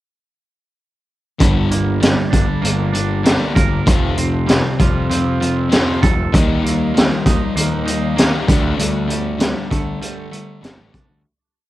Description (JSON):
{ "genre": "indie rock", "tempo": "98 BPM", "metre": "4/4", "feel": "straight", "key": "G minor", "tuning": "A4 = 440 Hz", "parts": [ { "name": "thick fuzz guitar", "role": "riff", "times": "1.4-11.2 s", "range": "F2 to Bb3", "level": "-22 LUFS", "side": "left 6 dB", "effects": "distortion, cassette tape" }, { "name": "twangy electric guitar", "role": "riff", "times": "1.4-11.2 s", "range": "G2 to Bb4", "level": "-24 LUFS", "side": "right 8 dB", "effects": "wide subtle chorus, cassette tape, analog delay" }, { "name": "fuzz picked electric bass", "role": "bass", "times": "1.4-11.2 s", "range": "F1 to D3", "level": "-21 LUFS", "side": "equal", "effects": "overdrive" }, { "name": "raw garage drum kit", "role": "drums", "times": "1.4-11.1 s", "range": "hi-hat, kick drum, snare drum", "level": "-16 LUFS", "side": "equal", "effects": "cassette tape" } ], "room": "little or no reverb", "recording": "home recording on cassette", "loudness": "-14 LUFS", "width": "side -15 dB against mid", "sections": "1.4-11.3 verse", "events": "fade-out 8.8-11.3", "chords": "1.4 Gm; 3.9 Fadd9; 6.3 Ebadd9; 8.5 Dsus4", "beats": "| 1.41 2.02 2.63 3.25 | 3.87 4.48 5.10 5.71 | 6.33 6.94 7.56 8.18 | 8.79 9.41 10.02 10.64" }